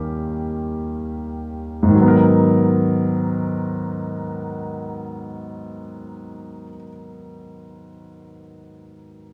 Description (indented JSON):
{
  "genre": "jazz ballad",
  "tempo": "free time",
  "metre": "none",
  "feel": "none",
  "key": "G# minor",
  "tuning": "A4 = 440 Hz",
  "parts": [
    { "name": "clear concert grand piano", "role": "solo", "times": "0.0-9.3 s", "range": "D#2 to A#4", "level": "-22 LUFS", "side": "equal", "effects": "none" }
  ],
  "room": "moderate stone room reverb, RT60 1.0 s",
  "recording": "band playing live in one room",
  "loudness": "-20 LUFS",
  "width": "mono",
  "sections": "0.0-1.9 A section; 1.9-7.6 B section",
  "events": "slowing down 0.0-1.9",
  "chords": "0.0 D#7; 1.9 G#m9",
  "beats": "free time"
}